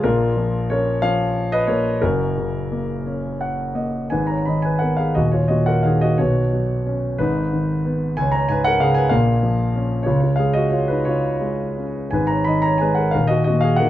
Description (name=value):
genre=classical, lyrical solo piano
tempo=56-65 BPM (dotted quarters)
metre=6/8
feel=rubato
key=G# dorian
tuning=A4 = 442 Hz
part: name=dark concert grand piano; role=solo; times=0.0-13.9 s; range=D#1 to B5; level=-17 LUFS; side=equal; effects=none
room=moderate recital hall reverb, RT60 1.3 s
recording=close, detailed microphones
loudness=-17 LUFS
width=side -13 dB against mid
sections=0.0-4.1 A section; 4.1-13.9 B section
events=grand piano fill 3.1-4.1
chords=0.0 A#m; 2.0 F#; 4.1 G#m; 5.2 D#m; 6.2 Bsus2; 7.2 G#m; 8.2 C#5; 9.1 A#m; 10.1 C#; 12.1 G#madd9; 13.2 D#5